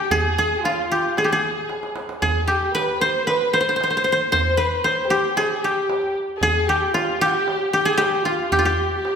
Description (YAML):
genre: Arabic maqam ensemble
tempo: 114 BPM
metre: 4/4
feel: straight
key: G maqam hijaz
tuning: A4 = 441 Hz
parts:
  - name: koto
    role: melody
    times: 0.0-9.2 s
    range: F4 to C5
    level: -20 LUFS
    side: equal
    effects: none
  - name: warm symphonic violin section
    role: second line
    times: 0.0-9.2 s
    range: F4 to C5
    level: -23 LUFS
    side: equal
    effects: none
  - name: darbuka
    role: percussion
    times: 0.1-9.2 s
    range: none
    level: -29 LUFS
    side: right 2 dB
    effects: none
room: wet recital hall reverb, RT60 1.4 s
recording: recorded in a church or concert hall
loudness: -18 LUFS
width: side -7 dB against mid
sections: 0.0-9.2 A section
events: drum fill 1.7-2.2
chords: none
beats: | 0.12 0.64 1.17 1.69 | 2.22 2.74 3.27 3.79 | 4.32 4.84 5.37 5.89 | 6.42 6.94 7.47 7.99 | 8.52 9.04